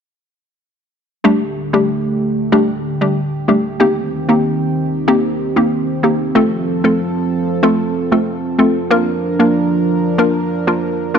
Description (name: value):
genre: dancehall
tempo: 94 BPM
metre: 4/4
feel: straight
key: G minor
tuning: A4 = 440 Hz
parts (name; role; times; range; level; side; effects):
- hollow square pluck; accompaniment; 1.2-11.2 s; G3 to Bb4; -15 LUFS; left 1 dB; chorus
- warm analog pad; sustained chords; 1.2-11.2 s; D3 to Bb4; -18 LUFS; right 2 dB; chorus
room: moderate lush hall reverb, RT60 2.5 s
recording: dark, warm production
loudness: -13 LUFS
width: side -7 dB against mid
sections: 1.2-11.2 A section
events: none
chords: 1.2 Gsus2; 3.8 Eb6; 6.4 F; 8.9 Bb